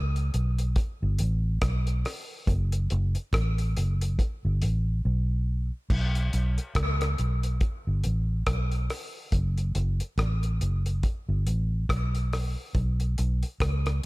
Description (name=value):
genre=dub reggae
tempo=70 BPM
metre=4/4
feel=swing 58% on 16ths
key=unclear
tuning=A4 = 439 Hz
part: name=vintage muted fingered electric bass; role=bass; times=0.0-14.0 s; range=F#1 to C#2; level=-25 LUFS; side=equal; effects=none
part: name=cloth-damped thuddy drum kit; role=drums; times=0.2-14.1 s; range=crash cymbal, hi-hat, kick drum, rim click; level=-30 LUFS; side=equal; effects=none
room=little or no reverb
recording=none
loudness=-25 LUFS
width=side -22 dB against mid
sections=0.0-5.9 A section; 5.9-14.1 B section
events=drums muted 5.0-5.9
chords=none